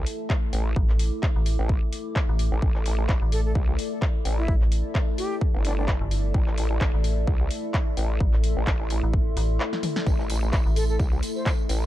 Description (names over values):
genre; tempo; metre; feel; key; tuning
bass house; 129 BPM; 4/4; swing 56% on 16ths; A minor; A4 = 440 Hz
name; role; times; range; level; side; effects
dark analog pad; sustained chords; 0.0-11.9 s; A3 to D5; -34 LUFS; left 1 dB; chorus, phaser, sidechain pumping
vowel-sweep wobble bass; bass; 0.0-11.9 s; G1 to C2; -26 LUFS; equal; chorus, overdrive, sidechain pumping
warbly tape-like pad; texture; 0.0-11.9 s; E4 to D6; -35 LUFS; left 2 dB; chorus, built-in reverb, sidechain pumping
house drum kit; drums; 0.1-11.8 s; handclaps, hi-hat, snare drum, toms; -33 LUFS; left 1 dB; none
electronic kick drum; drums; 0.3-11.6 s; none; -24 LUFS; equal; overdrive
metallic FM bass; bass; 0.8-11.0 s; G1 to A1; -24 LUFS; equal; tube saturation, sidechain pumping
breathy mellow silver concert flute; melody; 3.3-5.8, 10.8-11.5 s; D4 to C5; -34 LUFS; left 1 dB; ping-pong delay
tambourine; percussion; 10.1-11.9 s; none; -41 LUFS; right 4 dB; none
room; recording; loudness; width
digital ambience; dark, warm production; -22 LUFS; side -14 dB against mid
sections
0.0-11.9 A section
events
break 9.6-10.1; drum fill 9.7-10.1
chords
0.0 A5